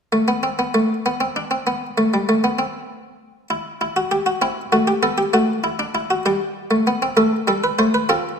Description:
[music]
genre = classical, baroque-style 4-part fugue for harpsichord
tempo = 65 BPM (dotted quarters)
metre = 6/8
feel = straight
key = unclear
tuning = A4 = 441 Hz
[part]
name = buff-stop harpsichord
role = solo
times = 0.1-8.4 s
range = G3 to C5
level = -17 LUFS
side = equal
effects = none
[sound]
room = moderate recital hall reverb, RT60 1.6 s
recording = none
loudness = -17 LUFS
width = side -6 dB against mid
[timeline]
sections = 0.0-8.4 A section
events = none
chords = 0.0 N.C.; 3.5 Em; 4.4 C; 5.3 Dadd9/A; 6.3 Gadd9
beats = 0.75 | 1.67 2.59 | 3.51 4.42 | 5.34 6.25 | 7.17 8.09

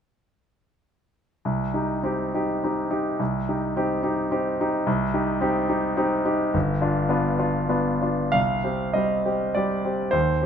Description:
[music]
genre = classical, romantic character piece for solo piano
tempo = 90-110 BPM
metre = 3/4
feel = rubato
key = C minor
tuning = A4 = 440 Hz
[part]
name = clear concert grand piano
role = solo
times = 1.5-10.5 s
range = G1 to F5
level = -22 LUFS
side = equal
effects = none
[sound]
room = moderate recital hall reverb, RT60 1.6 s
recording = close, detailed microphones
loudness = -22 LUFS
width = side -8 dB against mid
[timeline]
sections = 1.4-8.3 A section; 8.3-10.5 B section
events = none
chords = 1.4 Cm; 6.5 G7; 8.3 Cm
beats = | 1.44 2.04 2.63 | 3.20 3.76 4.32 | 4.87 5.42 5.98 | 6.54 7.11 7.70 | 8.35 8.96 9.56 | 10.14

